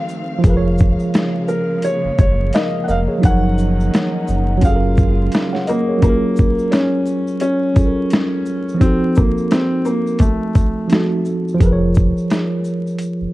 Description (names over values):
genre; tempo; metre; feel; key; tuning
lo-fi hip hop; 86 BPM; 4/4; swing 58% on 16ths; F# major; A4 = 439 Hz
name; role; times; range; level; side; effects
mellow tine electric piano; accompaniment; 0.0-13.3 s; F3 to F#5; -19 LUFS; right 1 dB; medium stereo tremolo
warm symphonic string section; sustained chords; 0.0-6.0 s; C#3 to F5; -28 LUFS; left 1 dB; none
dusty soul sampler-style drum kit; drums; 0.1-13.2 s; hi-hat, kick drum, shaker, snare drum; -16 LUFS; equal; overdrive
egg shaker; percussion; 0.1-13.2 s; none; -47 LUFS; left 5 dB; none
sub bass with octave; bass; 0.4-5.3, 11.6-13.3 s; E#1 to F#1; -18 LUFS; equal; none
felt-muted upright piano; melody; 1.5-11.2 s; A3 to F#5; -20 LUFS; left 1 dB; none
room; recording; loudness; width
light reverb, small room ambience; dark, warm production, vinyl crackle; -14 LUFS; side -18 dB against mid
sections
0.0-6.0 A section; 6.0-13.3 B section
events
none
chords
0.4 A#m7/E#; 3.2 D#m9/F#; 4.6 F#maj9; 8.8 F7b9; 11.6 A#m7/E#